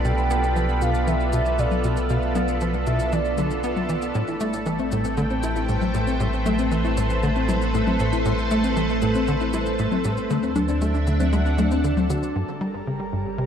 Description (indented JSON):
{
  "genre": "ambient, sequencer-driven space music",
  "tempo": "117 BPM",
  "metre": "4/4",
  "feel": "straight",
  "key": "A minor",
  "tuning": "A4 = 440 Hz",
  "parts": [
    { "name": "soft octave-layered synth lead", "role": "melody", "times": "0.0-3.9 s", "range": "D5 to G5", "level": "-29 LUFS", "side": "equal", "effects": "chorus, phaser, shimmer reverb, tape echo" },
    { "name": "string machine, full ensemble", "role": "sustained chords", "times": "0.0-13.5 s", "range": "G3 to B5", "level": "-26 LUFS", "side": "right 1 dB", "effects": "ensemble chorus, shimmer reverb" },
    { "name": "tight sequencer bass", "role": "riff", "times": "0.0-13.5 s", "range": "G2 to E4", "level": "-27 LUFS", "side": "right 1 dB", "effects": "analog chorus, cassette tape, tape echo" },
    { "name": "warm sub bass", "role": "bass", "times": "0.0-13.5 s", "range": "G1 to D2", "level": "-26 LUFS", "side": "equal", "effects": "none" },
    { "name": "electronic shaker and toms", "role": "percussion", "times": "0.0-12.3 s", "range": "none", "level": "-31 LUFS", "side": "left 6 dB", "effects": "tape echo" },
    { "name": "bubbling stepped-filter texture", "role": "texture", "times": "0.0-13.5 s", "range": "A4 to Bb5", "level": "-35 LUFS", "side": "right 1 dB", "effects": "chorus, built-in reverb, shimmer reverb" },
    { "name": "thumb-piano-like synth pluck", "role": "arpeggios", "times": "4.3-12.2 s", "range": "F#3 to F#4", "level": "-27 LUFS", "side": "left 3 dB", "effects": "chorus, auto-pan, shimmer reverb, tape echo" }
  ],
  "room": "moderate plate reverb, RT60 2.2 s",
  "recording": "echo-heavy mix, cassette tape",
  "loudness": "-20 LUFS",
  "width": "side -8 dB against mid",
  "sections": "0.0-12.4 A section; 12.4-13.5 B section",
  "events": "none",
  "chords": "0.0 Bm7b5; 4.2 Am7; 10.3 D7; 12.4 Gdim"
}